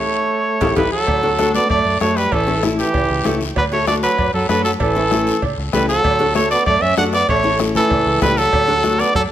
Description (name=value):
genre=latin, cumbia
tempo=193 BPM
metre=4/4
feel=straight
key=D major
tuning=A4 = 438 Hz
part: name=clear trumpet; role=melody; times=0.0-9.2 s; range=G4 to F#5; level=-17 LUFS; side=equal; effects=tape echo
part: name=bright trombone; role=second line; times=0.0-9.2 s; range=E3 to D4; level=-23 LUFS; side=right 4 dB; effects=none
part: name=nylon-string guitar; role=accompaniment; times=0.6-9.1 s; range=C#4 to A4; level=-22 LUFS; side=left 3 dB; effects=none
part: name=fingered electric bass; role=bass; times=0.6-9.3 s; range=A1 to F#2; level=-25 LUFS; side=equal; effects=none
part: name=bombo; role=percussion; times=0.6-9.3 s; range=none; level=-26 LUFS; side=left 2 dB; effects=none
part: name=congas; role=percussion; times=0.6-9.0 s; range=none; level=-26 LUFS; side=left 3 dB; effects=none
part: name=guiro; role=percussion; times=0.6-9.3 s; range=none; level=-31 LUFS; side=left 7 dB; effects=none
part: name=timbales and cowbell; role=percussion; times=0.6-9.3 s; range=none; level=-27 LUFS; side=right 7 dB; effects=none
room=moderate large studio reverb, RT60 1.1 s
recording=none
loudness=-14 LUFS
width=side -11 dB against mid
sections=0.0-1.1 A section; 1.1-9.3 A section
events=drum fill 0.0-1.1; band accent 0.0-1.1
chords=0.0 A7; 1.1 D; 2.3 A7; 3.6 D; 4.8 A; 6.0 D; 7.3 A; 8.5 D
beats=0.15 0.46 0.77 | 1.08 1.39 1.70 2.01 | 2.32 2.63 2.94 3.25 | 3.56 3.87 4.18 4.49 | 4.80 5.12 5.42 5.74 | 6.05 6.36 6.67 6.98 | 7.29 7.60 7.91 8.22 | 8.53 8.84 9.14